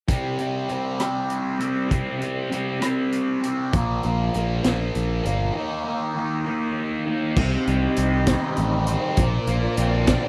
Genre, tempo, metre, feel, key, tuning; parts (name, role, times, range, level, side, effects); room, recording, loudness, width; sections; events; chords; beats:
psychedelic rock; 66 BPM (dotted quarters); 6/8; straight; C minor; A4 = 439 Hz
fuzz guitar; riff; 0.1-10.3 s; Bb2 to Eb4; -26 LUFS; equal; distortion, phaser
raw garage drum kit; drums; 0.1-10.2 s; crash cymbal, hi-hat, kick drum, rim click, snare drum; -27 LUFS; equal
picked electric bass; bass; 3.7-10.2 s; G1 to C2; -26 LUFS; equal
dark chamber string section; sustained chords; 7.4-10.3 s; C4 to Eb5; -32 LUFS; equal
studio ambience; dry, close 1970s-style studio recording; -24 LUFS; mono
0.1-7.4 A section; 7.4-10.3 B section
break 5.6-7.4
0.1 C5; 3.7 Bb5; 5.6 Eb5; 7.4 Cm; 9.2 Bbadd9
| 0.09 1.01 | 1.92 2.83 | 3.74 4.65 | 5.55 6.46 | 7.37 8.28 | 9.18 10.09